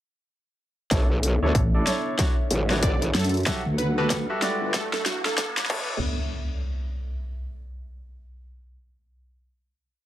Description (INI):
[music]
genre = glitch hop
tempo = 94 BPM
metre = 4/4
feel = swing 61% on 16ths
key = B minor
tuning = A4 = 440 Hz
[part]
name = dark analog pad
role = sustained chords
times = 0.9-6.0 s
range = G3 to F#5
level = -34 LUFS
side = left 1 dB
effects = chorus, sidechain pumping
[part]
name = clear baby grand piano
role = stabs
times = 0.9-6.0 s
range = D4 to E5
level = -30 LUFS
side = right 1 dB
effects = vintage 12-bit sampler grit, sidechain pumping, low-pass filter, digital delay
[part]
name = growl bass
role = bass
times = 0.9-6.0 s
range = A1 to D2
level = -24 LUFS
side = equal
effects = chorus
[part]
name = dubstep drum kit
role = drums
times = 0.9-5.9 s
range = crash cymbal, hi-hat, snare drum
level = -28 LUFS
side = left 1 dB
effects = small room ambience
[part]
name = electronic kick drum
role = drums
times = 0.9-5.9 s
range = none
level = -25 LUFS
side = equal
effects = distortion, small room ambience
[part]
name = riser and impact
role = sound effects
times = 2.7-8.3 s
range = none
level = -34 LUFS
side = equal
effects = none
[part]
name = vowel-sweep wobble bass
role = bass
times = 1.6-4.7 s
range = G1 to F#2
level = -24 LUFS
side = equal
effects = chorus, tube saturation
[part]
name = plucky unison lead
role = melody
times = 2.8-5.5 s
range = F#4 to D5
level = -32 LUFS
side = right 1 dB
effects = digital delay
[sound]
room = light reverb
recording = high-pass filter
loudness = -22 LUFS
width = side -13 dB against mid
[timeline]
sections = 0.9-6.0 build; 6.0-8.6 final hit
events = build-up 0.9-6.0; drum fill 0.9-6.0; filter sweep on grand piano 0.9-6.0; filter sweep 0.9-6.0; riser 2.7-6.0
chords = 0.9 Bm11; 2.2 Dmaj9; 3.5 Gmaj9; 4.7 Em9; 5.7 Bm11; 6.0 N.C.